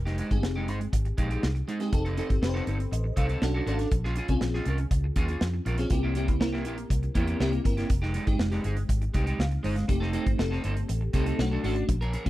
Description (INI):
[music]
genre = polished 1980s jazz-funk pop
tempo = 120 BPM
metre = 4/4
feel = straight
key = F minor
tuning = A4 = 443 Hz
[part]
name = vintage muted fingered electric bass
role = bass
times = 0.0-12.3 s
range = F1 to F2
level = -28 LUFS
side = equal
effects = none
[part]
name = electric guitar at the edge of break-up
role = riff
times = 0.1-12.3 s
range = Ab3 to Bb4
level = -34 LUFS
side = right 2 dB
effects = lush chorus
[part]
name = modern studio drum kit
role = drums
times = 0.1-12.3 s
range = hi-hat, kick drum, snare drum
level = -29 LUFS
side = equal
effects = none
[part]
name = bell-like FM electric piano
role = accompaniment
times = 0.3-12.3 s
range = Ab3 to F5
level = -32 LUFS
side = left 1 dB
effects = tremolo, ensemble chorus
[sound]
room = studio reverb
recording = dry, close 1970s-style studio recording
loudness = -25 LUFS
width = side -16 dB against mid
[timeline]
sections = 0.0-12.3 A section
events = none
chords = 0.0 Fm9; 1.9 F7; 3.4 Bm7; 3.9 Bbm7; 5.9 C7; 7.9 Fm9; 9.9 F7; 11.4 Bm7